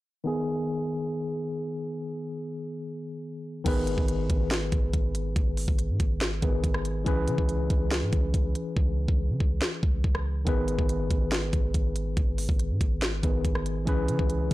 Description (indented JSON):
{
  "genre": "hip hop, trap",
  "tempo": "141 BPM",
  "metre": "4/4",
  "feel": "half-time",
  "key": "G# minor",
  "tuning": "A4 = 442 Hz",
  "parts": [
    { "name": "tine electric piano", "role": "accompaniment", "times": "0.2-14.5 s", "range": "D#3 to B4", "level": "-31 LUFS", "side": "left 2 dB", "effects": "medium stereo tremolo" },
    { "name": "clean 808-style bass", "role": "bass", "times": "3.7-14.5 s", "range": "G#1 to C#3", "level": "-29 LUFS", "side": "equal", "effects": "none" },
    { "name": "trap drum kit", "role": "drums", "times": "3.7-14.5 s", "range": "crash cymbal, hi-hat, kick drum, rim click, snare drum", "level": "-27 LUFS", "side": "equal", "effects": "none" }
  ],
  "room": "little or no reverb",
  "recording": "blown-out, overdriven recording, overdrive, low-pass filter",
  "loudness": "-25 LUFS",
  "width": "side -17 dB against mid",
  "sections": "0.3-3.7 A section; 3.7-14.5 B section",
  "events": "filter sweep 0.3-3.7; hi-hats muted 8.8-10.5",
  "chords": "0.3 G#m; 7.1 C#m7; 10.5 G#m; 13.9 C#m7",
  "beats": "| 0.26 0.68 1.11 1.53 | 1.96 2.38 2.81 3.23 | 3.66 4.08 4.51 4.94 | 5.36 5.79 6.21 6.64 | 7.06 7.49 7.91 8.34 | 8.77 9.19 9.62 10.04 | 10.47 10.89 11.32 11.74 | 12.17 12.60 13.02 13.45 | 13.87 14.30"
}